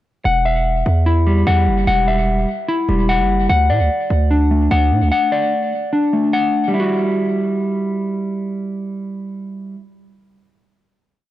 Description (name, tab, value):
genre	hip hop, trap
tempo	148 BPM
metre	4/4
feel	half-time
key	E minor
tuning	A4 = 440 Hz
part	mellow electric guitar	arpeggios	0.3-9.9 s	G3 to F#5	-17 LUFS	left 1 dB	low-pass filter, digital delay
part	distorted 808-style bass	bass	0.3-5.1 s	E1 to A2	-16 LUFS	right 1 dB	distortion
room	moderate studio reverb, RT60 0.6 s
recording	dark, warm production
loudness	-15 LUFS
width	side -14 dB against mid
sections	0.3-6.7 hook; 6.7-10.0 final chord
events	none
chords	0.3 Emadd9; 3.5 D; 6.7 Emadd9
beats	| 0.25 0.66 1.06 1.47 | 1.87 2.28 2.68 3.09 | 3.50 3.90 4.31 4.71 | 5.12 5.52 5.93 6.33 | 6.74 7.14 7.55 7.95 | 8.36 8.77 9.17 9.58